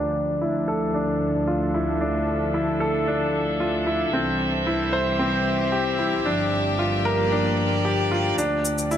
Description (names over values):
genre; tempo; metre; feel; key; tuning
piano and strings electronica; 113 BPM; 4/4; straight; D minor; A4 = 440 Hz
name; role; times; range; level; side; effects
bright chamber string section; sustained chords; 0.0-9.0 s; E3 to E5; -26 LUFS; left 1 dB; low-pass filter
bright baby grand piano; riff; 0.0-9.0 s; C4 to C5; -23 LUFS; equal; ping-pong delay
warm chamber double bass section; bass; 0.0-9.0 s; G1 to D2; -28 LUFS; equal; none
shaker; drums; 8.4-9.0 s; none; -29 LUFS; left 1 dB; overdrive
room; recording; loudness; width
moderate lush hall reverb, RT60 2.4 s; low-pass filter; -21 LUFS; side -10 dB against mid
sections
0.0-8.4 A section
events
filter sweep 0.0-8.4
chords
0.0 Dmadd9; 4.1 C; 6.3 Gm7; 8.4 Dm